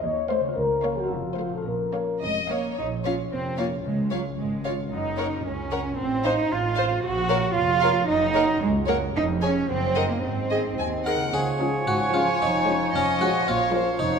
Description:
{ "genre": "cinematic, playful, whimsical film cue", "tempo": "112 BPM", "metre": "2/4", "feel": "straight", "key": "Bb minor, Db major from 7.0 s", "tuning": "A4 = 442 Hz", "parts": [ { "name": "dark French horn section", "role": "sustained chords", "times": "0.0-2.2 s", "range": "F4 to Db5", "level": "-26 LUFS", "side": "left 4 dB", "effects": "none" }, { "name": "concert harp", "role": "arpeggios", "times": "0.0-14.2 s", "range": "F2 to Eb5", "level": "-34 LUFS", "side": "left 6 dB", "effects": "none" }, { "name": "warm chamber cello section", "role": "bass", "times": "0.0-14.2 s", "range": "Db2 to Gb4", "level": "-26 LUFS", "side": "right 4 dB", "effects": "none" }, { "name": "warm chamber double bass section", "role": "bass", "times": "0.0-14.2 s", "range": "F1 to Eb2", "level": "-31 LUFS", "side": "right 4 dB", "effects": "none" }, { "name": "warm chamber violin section", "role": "melody", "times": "0.3-14.2 s", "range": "C5 to Ab5", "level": "-33 LUFS", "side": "left 4 dB", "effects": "none" }, { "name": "rich chamber violin section", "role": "second line", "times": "0.3-13.9 s", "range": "Bb3 to Ab5", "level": "-31 LUFS", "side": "left 3 dB", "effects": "none" }, { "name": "rich chamber viola section", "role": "accompaniment", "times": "0.3-13.9 s", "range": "F3 to C5", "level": "-32 LUFS", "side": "right 2 dB", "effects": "none" }, { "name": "harpsichord", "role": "melody", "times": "11.1-14.2 s", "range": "Db4 to Bb4", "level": "-27 LUFS", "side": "equal", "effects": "none" }, { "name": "dark clarinet", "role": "second line", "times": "11.1-14.2 s", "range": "Db4 to Bb4", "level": "-31 LUFS", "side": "equal", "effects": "none" }, { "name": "clear oboe", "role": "second line", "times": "11.3-14.2 s", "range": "Db5", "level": "-29 LUFS", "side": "right 3 dB", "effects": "none" }, { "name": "mellow hollow silver concert flute", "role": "second line", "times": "11.3-14.2 s", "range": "F5 to Ab5", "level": "-29 LUFS", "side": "equal", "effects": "none" }, { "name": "warm bassoon", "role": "accompaniment", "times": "11.3-14.2 s", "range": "F3", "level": "-30 LUFS", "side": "right 2 dB", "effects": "none" } ], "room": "wet scoring stage reverb, RT60 1.8 s", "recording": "minimal, uncompressed stereo recording", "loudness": "-22 LUFS", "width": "side -6 dB against mid", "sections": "0.0-2.8 A section; 2.8-11.3 B section; 11.3-14.2 A section", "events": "none", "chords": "0.0 F7/Eb; 0.6 Bbm/Db; 1.1 F; 1.7 Bbm; 3.9 Db; 4.9 Gb; 6.0 F/A; 7.0 Bbm; 8.1 Gb; 9.2 Db/F; 9.7 Ebm/Gb; 10.2 Ab; 11.3 Db; 12.4 Db/F; 13.5 Bbm" }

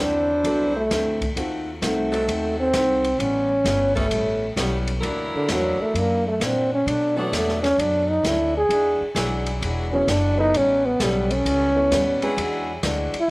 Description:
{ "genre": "jazz, big band swing", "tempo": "131 BPM", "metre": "4/4", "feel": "swing 66% on 8ths", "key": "A mixolydian", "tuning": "A4 = 440 Hz", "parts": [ { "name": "breathy trombone", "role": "melody", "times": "0.0-13.3 s", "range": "D3 to G#4", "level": "-21 LUFS", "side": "equal", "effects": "cassette tape" }, { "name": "picked steel-string acoustic guitar", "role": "accompaniment", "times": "0.0-13.2 s", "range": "F#2 to F#4", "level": "-30 LUFS", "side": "left 2 dB", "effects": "none" }, { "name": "edgy saxophone section", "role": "sustained chords", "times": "0.0-12.8 s", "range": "F#3 to C5", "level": "-30 LUFS", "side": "equal", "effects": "none" }, { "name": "upright bass", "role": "bass", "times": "0.0-13.2 s", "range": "E1 to B2", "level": "-28 LUFS", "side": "equal", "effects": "none" }, { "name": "dark baby grand piano", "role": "accompaniment", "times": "0.4-12.4 s", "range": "E3 to C#5", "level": "-31 LUFS", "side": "right 1 dB", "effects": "none" }, { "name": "open jazz drum kit", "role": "drums", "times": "0.4-13.2 s", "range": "hi-hat, kick drum, ride cymbal, snare drum", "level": "-29 LUFS", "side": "equal", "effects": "cassette tape" } ], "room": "moderate spring reverb, RT60 2.4 s", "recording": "home recording on cassette", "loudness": "-19 LUFS", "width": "side -24 dB against mid", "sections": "0.0-13.3 A section", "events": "trombone solo 0.0-13.3", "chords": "0.0 D9; 1.4 D#dim7; 3.2 A9; 5.0 F#7alt; 6.9 Bm7; 8.7 E9; 10.5 A9; 12.4 E9" }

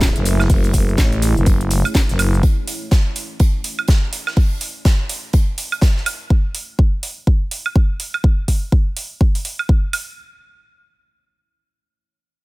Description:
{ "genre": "bass house", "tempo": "124 BPM", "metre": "4/4", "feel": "swing 60% on 16ths", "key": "F# minor", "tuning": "A4 = 439 Hz", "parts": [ { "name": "dark analog pad", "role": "sustained chords", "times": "0.0-2.4 s", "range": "A3 to G#4", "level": "-31 LUFS", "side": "right 2 dB", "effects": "chorus, sidechain pumping" }, { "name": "growling FM bass", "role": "bass", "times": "0.0-2.4 s", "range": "F#1 to A1", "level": "-17 LUFS", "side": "equal", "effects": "tube saturation, sidechain pumping" }, { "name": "big rock drum kit", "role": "drums", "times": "0.0-6.2 s", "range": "hi-hat, snare drum", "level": "-30 LUFS", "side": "right 2 dB", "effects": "sidechain pumping on hats, high-pass filter on hats, high-pass filter on snare, high-pass filter on room" }, { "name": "electronic kick drum", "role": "drums", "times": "0.0-9.8 s", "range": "none", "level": "-14 LUFS", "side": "equal", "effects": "none" }, { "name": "house drum kit", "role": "drums", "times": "0.0-10.0 s", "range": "hi-hat, shaker, snare drum, woodblock", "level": "-23 LUFS", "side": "right 2 dB", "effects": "none" }, { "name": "deep dark ambient pad", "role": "texture", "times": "0.0-6.3 s", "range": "A3 to C#5", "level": "-31 LUFS", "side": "right 2 dB", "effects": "chorus, built-in reverb, sidechain pumping" } ], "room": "studio ambience", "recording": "none", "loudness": "-15 LUFS", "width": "side -22 dB against mid", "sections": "0.0-10.2 A section; 10.2-12.4 B section", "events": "fade-out on ambient pad 0.0-6.3", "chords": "0.0 F#madd9; 10.2 N.C." }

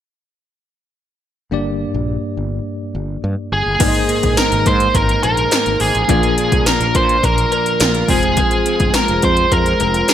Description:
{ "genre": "1980s-style pop", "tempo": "105 BPM", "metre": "4/4", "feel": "straight", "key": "unclear", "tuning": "A4 = 439 Hz", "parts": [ { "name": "barky tine electric piano", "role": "accompaniment", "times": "1.5-10.1 s", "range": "G2 to Eb5", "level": "-22 LUFS", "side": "left 2 dB", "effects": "medium stereo tremolo" }, { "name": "fretless electric bass", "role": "bass", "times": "1.5-10.0 s", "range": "F1 to Bb2", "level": "-21 LUFS", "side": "equal", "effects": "none" }, { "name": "smooth overdriven lead guitar", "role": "melody", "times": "3.5-10.1 s", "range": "Ab4 to C5", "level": "-16 LUFS", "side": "equal", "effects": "none" }, { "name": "direct-recorded clean electric guitar", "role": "riff", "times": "3.8-10.1 s", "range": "Eb3 to Ab4", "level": "-25 LUFS", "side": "right 6 dB", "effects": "analog chorus" }, { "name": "mellow synth brass", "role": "stabs", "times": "3.8-10.1 s", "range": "F3 to C5", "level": "-24 LUFS", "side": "left 1 dB", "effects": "chorus" }, { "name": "80s electronic pad drums", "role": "drums", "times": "3.8-10.1 s", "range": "crash cymbal, hi-hat, kick drum, snare drum", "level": "-18 LUFS", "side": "equal", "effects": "none" }, { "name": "cowbell", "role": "percussion", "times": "3.8-10.1 s", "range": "none", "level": "-31 LUFS", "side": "left 8 dB", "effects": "none" } ], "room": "light reverb", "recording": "bright 1980s-style digital production", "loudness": "-13 LUFS", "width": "side -10 dB against mid", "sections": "1.5-3.8 A section; 3.8-10.1 B section", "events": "none", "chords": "1.5 Gm; 3.8 Absus2; 6.1 Bb; 8.1 Fm" }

